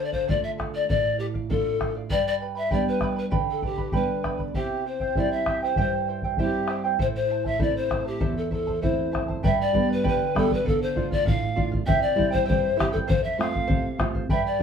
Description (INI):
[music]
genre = andean folk, Andean ensemble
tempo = 98 BPM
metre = 2/4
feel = straight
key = unclear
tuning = A4 = 440 Hz
[part]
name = breathy pan flute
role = melody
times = 0.0-14.6 s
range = G4 to F5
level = -26 LUFS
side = left 4 dB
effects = none
[part]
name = charango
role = accompaniment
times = 0.0-14.6 s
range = E4 to B5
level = -30 LUFS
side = right 8 dB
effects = none
[part]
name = nylon-string guitar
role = accompaniment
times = 0.0-14.6 s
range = E2 to F4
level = -29 LUFS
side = right 3 dB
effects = none
[part]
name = bombo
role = percussion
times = 0.1-14.6 s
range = none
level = -27 LUFS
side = left 1 dB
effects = none
[sound]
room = moderate studio ambience, RT60 0.5 s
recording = band playing live in one room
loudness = -22 LUFS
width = side -7 dB against mid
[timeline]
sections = 0.0-9.4 A section; 9.4-14.6 B section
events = none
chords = 0.0 Dm; 2.1 G; 4.6 C; 7.0 Am; 9.4 G; 10.7 Dm; 11.9 C; 13.1 F